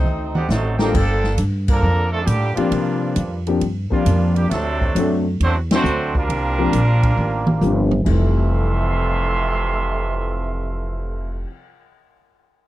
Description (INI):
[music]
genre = jazz, big band swing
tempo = 135 BPM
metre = 4/4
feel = swing 68% on 8ths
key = F major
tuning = A4 = 439 Hz
[part]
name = warm saxophone section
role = melody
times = 0.0-0.5 s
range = A3 to C5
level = -33 LUFS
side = left 4 dB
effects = tape echo
[part]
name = muted trombone section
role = second line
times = 0.0-11.4 s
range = F2 to A4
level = -27 LUFS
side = right 4 dB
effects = none
[part]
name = upright bass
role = bass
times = 0.0-11.4 s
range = F1 to C3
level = -20 LUFS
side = equal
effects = none
[part]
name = swinging big-band drum kit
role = drums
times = 0.1-11.5 s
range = crash cymbal, cymbal swell, hi-hat, kick drum, ride cymbal, snare drum, toms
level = -23 LUFS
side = equal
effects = none
[part]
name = mellow trumpet section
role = melody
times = 0.4-11.4 s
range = F#3 to C6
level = -25 LUFS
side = right 2 dB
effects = none
[part]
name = warm trumpet section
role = stabs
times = 0.4-1.4 s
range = A4 to G5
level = -27 LUFS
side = left 1 dB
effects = none
[part]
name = warm grand piano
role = accompaniment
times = 0.8-11.5 s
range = F2 to C5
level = -23 LUFS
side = left 4 dB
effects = none
[sound]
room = little or no reverb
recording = dry, close 1970s-style studio recording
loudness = -17 LUFS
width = side -15 dB against mid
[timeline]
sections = 0.9-8.1 A section; 8.1-11.6 B section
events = drum fill 0.0-0.9, 7.2-8.1; band accent 1.6, 5.6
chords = 0.0 D7b9; 0.9 Gm9; 2.7 C9sus4; 4.5 D7; 6.3 C9sus4; 8.1 Fmaj7